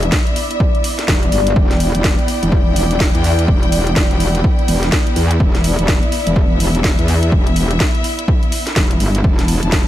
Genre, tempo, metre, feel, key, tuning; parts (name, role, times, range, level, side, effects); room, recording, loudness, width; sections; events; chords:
bass house; 125 BPM; 4/4; swing 61% on 16ths; E minor; A4 = 440 Hz
clear studio string section; sustained chords; 0.0-9.9 s; B3 to A5; -23 LUFS; left 1 dB; sidechain pumping
metallic wobble bass; bass; 0.0-9.8 s; E1 to E2; -16 LUFS; equal; distortion, chorus, overdrive, sidechain pumping
house drum kit; drums; 0.0-9.8 s; hi-hat, snare drum; -21 LUFS; equal
deep dark ambient pad; texture; 0.0-9.9 s; D5; -24 LUFS; left 2 dB; chorus, built-in reverb, sidechain pumping
electronic kick drum; drums; 0.1-9.8 s; -16 LUFS; equal; overdrive
little or no reverb; -12 LUFS; side -13 dB against mid
0.0-9.9 A section
0.0 E5